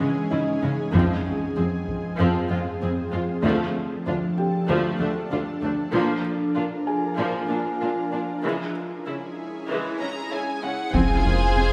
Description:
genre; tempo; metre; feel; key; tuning
cinematic, hybrid orchestral and electronic film score; 96 BPM; 4/4; straight; F dorian; A4 = 440 Hz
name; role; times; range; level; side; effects
rich symphonic viola section; accompaniment; 0.0-11.7 s; Fb3 to Ab4; -30 LUFS; equal; none
ethereal airy pad; sustained chords; 0.0-11.7 s; Fb3 to C5; -30 LUFS; equal; ensemble chorus, built-in reverb
warm symphonic cello section; bass; 0.0-11.6 s; D2 to Db3; -29 LUFS; equal; none
felt-muted upright piano; texture; 0.0-11.0 s; Eb4 to Ab5; -36 LUFS; equal; none
taiko ensemble; drums; 0.9-2.2, 5.9-7.1, 10.9-11.7 s; none; -34 LUFS; equal; none
rich symphonic violin section; melody; 10.0-11.7 s; Gb5 to Bb5; -29 LUFS; equal; none
rich symphonic violin section; second line; 10.9-11.7 s; Ab4 to C5; -29 LUFS; equal; none
saturated sub bass; bass; 10.9-11.7 s; F1; -25 LUFS; equal; none
room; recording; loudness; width
wet recital hall reverb, RT60 1.7 s; recorded in a church or concert hall, high-pass filter; -25 LUFS; mono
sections
0.0-10.9 A section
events
build-up 0.0-10.9; filter sweep 0.0-10.9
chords
0.0 Dbm; 0.9 Fm; 3.4 Dm; 5.9 Bb; 8.4 Dbm; 10.9 Fm

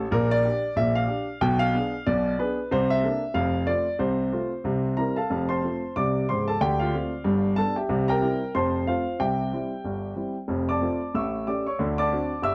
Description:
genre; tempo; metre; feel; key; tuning
jazz, stride piano; 185 BPM; 4/4; swing 58% on 8ths; F major; A4 = 440 Hz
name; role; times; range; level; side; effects
warm grand piano; solo; 0.0-12.5 s; Db1 to E6; -25 LUFS; equal; none
room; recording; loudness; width
moderate small room reverb, RT60 0.5 s; dark, warm production; -25 LUFS; mono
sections
0.0-5.3 A section; 5.3-12.5 B section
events
none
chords
0.1 Gm/Bb; 1.4 Bdim7; 2.7 C13; 3.4 F; 4.0 F/C; 4.7 C; 5.3 F; 6.6 Dm7; 7.3 G7; 7.9 C7; 8.6 F; 9.2 C; 10.5 F; 11.1 A7; 11.8 D7

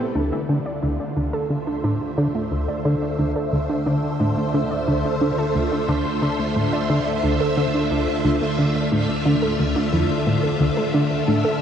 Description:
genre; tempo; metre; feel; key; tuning
ambient, sequencer-driven space music; 89 BPM; 4/4; straight; D minor; A4 = 440 Hz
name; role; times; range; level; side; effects
phased string machine; sustained chords; 0.0-11.6 s; A2 to E5; -23 LUFS; equal; ensemble chorus, phaser
warbly dusty pluck; arpeggios; 0.0-11.6 s; D3 to D5; -25 LUFS; right 2 dB; chorus, auto-pan, tape echo
fat analog bass; bass; 0.0-11.6 s; A1 to D2; -38 LUFS; equal; none
plucky analog bass; riff; 0.2-11.4 s; D2 to D3; -23 LUFS; equal; analog chorus, tape echo
wind-like tuned noise texture; texture; 1.6-11.6 s; D4 to E5; -37 LUFS; right 1 dB; none
room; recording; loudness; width
wet huge ambient reverb, RT60 8.3 s; worn, warbling old tape, cassette tape, warbly pitch drift; -19 LUFS; side -8 dB against mid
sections
0.2-11.6 A section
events
fade-in on analog synth bass 0.2-11.6; filter sweep on analog synth bass 0.2-11.6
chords
0.2 Dm7

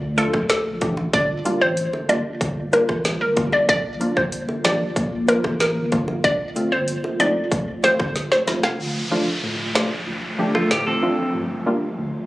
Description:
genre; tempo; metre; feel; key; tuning
dancehall; 94 BPM; 4/4; straight; unclear; A4 = 440 Hz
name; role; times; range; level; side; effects
granular cloud pad; sustained chords; 0.0-12.3 s; Bb2 to F4; -30 LUFS; equal; built-in reverb, sidechain pumping
sub bass with octave; bass; 0.0-8.6 s; F1 to D2; -29 LUFS; equal; none
hollow square pluck; melody; 0.2-8.7 s; A4 to F5; -21 LUFS; equal; chorus, digital delay
wavetable chord stab; accompaniment; 0.2-12.3 s; D2 to G4; -24 LUFS; equal; none
island pop drum kit; drums; 0.2-10.9 s; hi-hat, kick drum, rim click, snare drum; -24 LUFS; equal; overdrive
bongos; percussion; 0.3-8.8 s; none; -32 LUFS; equal; none
downlifter; sound effects; 8.8-12.3 s; none; -29 LUFS; equal; none
clean electric guitar; arpeggios; 10.5-11.3 s; A3 to A4; -22 LUFS; equal; spring reverb
room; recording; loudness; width
moderate lush hall reverb, RT60 1.7 s; recorded on a phone in the room, club reverb; -18 LUFS; side -18 dB against mid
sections
0.0-8.8 A section; 8.8-12.3 B section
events
drum fill 8.2-8.8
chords
0.0 Dm; 1.1 Gm7; 3.7 Bb; 6.2 F; 8.8 Dm; 11.3 Gm7

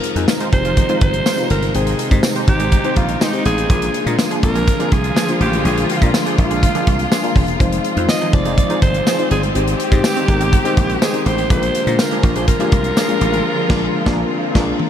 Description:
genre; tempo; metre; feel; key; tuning
1980s-style pop; 123 BPM; 4/4; straight; unclear; A4 = 440 Hz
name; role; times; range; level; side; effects
breathy alto saxophone; melody; 0.0-14.9 s; Eb4 to Eb5; -21 LUFS; right 2 dB; diffuse ambient delay
mellow FM electric piano; accompaniment; 0.0-14.9 s; Ab3 to G5; -22 LUFS; left 5 dB; chorus
warm studio string section; sustained chords; 0.0-14.9 s; C3 to G4; -23 LUFS; equal; none
modern studio drum kit; drums; 0.0-14.9 s; crash cymbal, hi-hat, kick drum, snare drum, tambourine, toms; -18 LUFS; equal; none
dry thumbed slap bass; bass; 0.2-14.7 s; Fb1 to Bb2; -20 LUFS; right 1 dB; none
tambourine; percussion; 0.3-13.1 s; none; -37 LUFS; right 7 dB; none
funky polysynth comp; stabs; 0.4-14.7 s; Eb3 to C5; -27 LUFS; right 4 dB; chorus
room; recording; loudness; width
moderate huge ambient reverb, RT60 9.2 s; dreamy mix soaked in reverb; -14 LUFS; side -9 dB against mid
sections
0.0-14.9 A section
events
band accent 13.5-14.9; drum fill 14.4-14.9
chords
0.0 Fm7; 1.7 Abmaj7; 3.7 Bb7; 7.6 Fm7; 9.6 Abmaj7; 11.5 Bb7

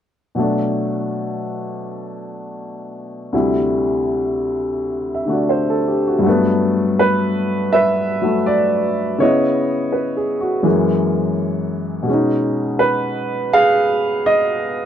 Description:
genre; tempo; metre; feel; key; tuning
solo jazz; 82 BPM; 4/4; swing 67% on 8ths, rubato; unclear; A4 = 440 Hz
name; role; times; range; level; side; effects
warm upright piano; solo; 0.3-14.9 s; D2 to F5; -16 LUFS; equal; none
room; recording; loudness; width
light reverb; dry, close 1970s-style studio recording; -16 LUFS; side -9 dB against mid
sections
0.4-6.2 A section; 6.2-14.9 B section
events
none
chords
0.4 Bm7; 3.3 D9sus4; 6.2 Gmaj9; 9.2 C#m9; 10.6 F#9; 12.1 B69

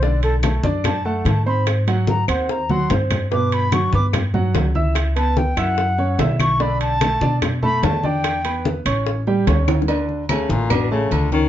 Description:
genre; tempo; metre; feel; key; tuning
Afro-Cuban jazz; 146 BPM; 4/4; straight; D major; A4 = 440 Hz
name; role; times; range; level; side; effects
concert flute; melody; 0.0-8.7 s; A4 to D6; -22 LUFS; left 1 dB; none
warm baby grand piano; accompaniment; 0.0-11.5 s; B2 to E6; -23 LUFS; right 3 dB; none
upright bass; bass; 0.0-11.5 s; A1 to B2; -21 LUFS; equal; none
bongos and cowbell; percussion; 0.0-11.5 s; none; -28 LUFS; left 7 dB; none
congas; percussion; 0.0-11.5 s; none; -24 LUFS; left 1 dB; none
timbales and agogo bells; percussion; 0.2-11.3 s; none; -28 LUFS; right 8 dB; none
claves; percussion; 0.4-10.9 s; none; -31 LUFS; left 8 dB; none
warm baritone saxophone; second line; 10.3-11.5 s; Bb2 to Eb3; -21 LUFS; left 5 dB; none
room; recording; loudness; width
moderate studio ambience, RT60 0.5 s; dark, warm production, nothing above 7.7 kHz; -17 LUFS; side -11 dB against mid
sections
0.0-9.9 A section; 9.9-11.5 A section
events
flute solo 0.0-9.9; drum fill 2.7-3.3, 9.7; baritone saxophone solo 9.9-11.5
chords
0.0 Bm7; 1.7 G#7; 3.3 Gmaj7; 5.0 A13/C#; 5.8 F#5; 6.6 Bm7; 8.2 Em7; 9.1 A7; 9.9 D5

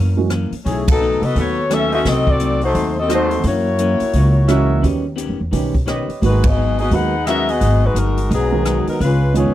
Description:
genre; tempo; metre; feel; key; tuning
jazz, big band swing; 173 BPM; 4/4; swing 62% on 8ths; unclear; A4 = 440 Hz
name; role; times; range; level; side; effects
vintage hollow-body jazz guitar; accompaniment; 0.0-9.5 s; F#2 to G4; -26 LUFS; left 6 dB; none
upright bass; bass; 0.0-9.5 s; G1 to F#2; -18 LUFS; equal; none
warm grand piano; accompaniment; 0.2-9.5 s; D#3 to D5; -21 LUFS; right 7 dB; none
swinging big-band drum kit; drums; 0.3-9.4 s; hi-hat, kick drum, ride cymbal, rim click, snare drum; -22 LUFS; equal; none
warm saxophone section; melody; 0.7-9.5 s; E3 to F#5; -18 LUFS; left 2 dB; none
dark trumpet section; stabs; 1.9-7.8 s; Gb4 to F#5; -25 LUFS; right 2 dB; none
room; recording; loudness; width
studio ambience; dry, close 1970s-style studio recording; -14 LUFS; side -13 dB against mid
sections
0.0-9.5 A section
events
band accent 0.8, 6.4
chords
0.0 F#7; 0.7 B7; 2.0 Cdim7; 3.4 F#7; 4.8 D#7alt; 6.2 G#m7; 9.0 C#7

